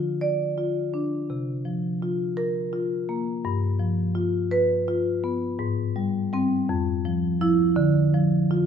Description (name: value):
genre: classical, contemporary piece for solo marimba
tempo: 56 BPM (dotted quarters)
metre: 6/8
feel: rubato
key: unclear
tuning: A4 = 442 Hz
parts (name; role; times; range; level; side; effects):
- marimba with medium hard mallets; solo; 0.0-8.7 s; F2 to D5; -22 LUFS; equal; none
room: moderate recital hall reverb, RT60 1.4 s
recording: minimal, uncompressed stereo recording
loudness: -22 LUFS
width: side -7 dB against mid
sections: 0.0-8.7 A section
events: none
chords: 0.0 Dm; 1.3 C7sus4; 3.4 G7; 5.6 Abmaj7; 6.7 N.C.; 7.8 Dm